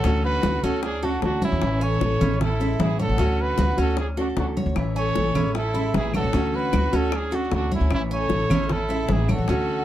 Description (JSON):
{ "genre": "latin, Cuban son and guajira", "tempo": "153 BPM", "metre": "4/4", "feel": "straight", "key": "A major", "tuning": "A4 = 440 Hz", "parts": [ { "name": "breathy trumpet", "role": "melody", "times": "0.0-9.8 s", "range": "E4 to C#5", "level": "-27 LUFS", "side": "right 2 dB", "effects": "none" }, { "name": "rich studio violin section", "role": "second line", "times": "0.0-9.8 s", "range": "C#4 to A4", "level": "-32 LUFS", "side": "equal", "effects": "none" }, { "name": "nylon-string guitar", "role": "accompaniment", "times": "0.0-9.8 s", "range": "D3 to F#4", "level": "-27 LUFS", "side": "left 1 dB", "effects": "none" }, { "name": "Cuban tres", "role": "arpeggios", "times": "0.0-9.8 s", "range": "C#4 to G#5", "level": "-34 LUFS", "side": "right 2 dB", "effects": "slapback echo" }, { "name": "upright bass", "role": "bass", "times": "0.0-9.8 s", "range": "A1 to E2", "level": "-25 LUFS", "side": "equal", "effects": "none" }, { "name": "bongos", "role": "percussion", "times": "0.0-9.7 s", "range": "none", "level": "-32 LUFS", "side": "left 5 dB", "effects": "none" }, { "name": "congas", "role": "percussion", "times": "0.0-9.8 s", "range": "none", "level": "-28 LUFS", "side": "equal", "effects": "none" }, { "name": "claves", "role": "percussion", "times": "4.8-9.5 s", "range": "none", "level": "-38 LUFS", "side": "left 2 dB", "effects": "none" } ], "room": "moderate booth ambience, RT60 0.2 s", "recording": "dark, warm production", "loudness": "-20 LUFS", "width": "side -12 dB against mid", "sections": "0.0-9.8 A section", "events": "none", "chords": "0.0 Dmaj7; 1.6 Amaj7; 3.2 Dmaj7; 4.8 Amaj7; 6.3 Dmaj7; 7.9 Amaj7", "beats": "| 0.05 0.44 0.83 1.23 | 1.62 2.01 2.41 2.80 | 3.19 3.58 3.98 4.37 | 4.76 5.16 5.55 5.95 | 6.34 6.73 7.12 7.52 | 7.91 8.30 8.70 9.09 | 9.49" }